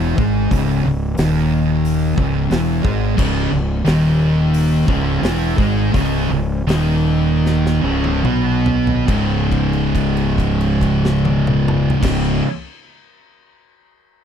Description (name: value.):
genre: stoner and doom metal.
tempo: 69-90 BPM.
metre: 4/4.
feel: straight.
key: C# minor.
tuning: A4 = 439 Hz.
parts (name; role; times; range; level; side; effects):
thick fuzz guitar; riff; 0.0-12.4 s; C#2 to B3; -20 LUFS; left 9 dB; distortion.
thick fuzz guitar; riff; 0.0-12.4 s; C#2 to B3; -20 LUFS; right 10 dB; distortion.
fuzz fingered electric bass; bass; 0.0-12.4 s; C#1 to B1; -21 LUFS; equal; overdrive.
big rock drum kit; drums; 0.2-12.2 s; crash cymbal, hi-hat, kick drum, snare drum, toms; -23 LUFS; equal; none.
high-gain distorted guitar; riff; 3.2-12.4 s; C#2 to B3; -25 LUFS; left 1 dB; distortion.
room: studio ambience.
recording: dry, close 1970s-style studio recording.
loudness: -14 LUFS.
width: side -8 dB against mid.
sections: 0.0-9.1 A section; 9.1-12.5 B section.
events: slowing down 3.2-9.1; drum fill 7.4-9.1; held note 9.1-12.0.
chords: 0.0 C#m; 9.1 C#5.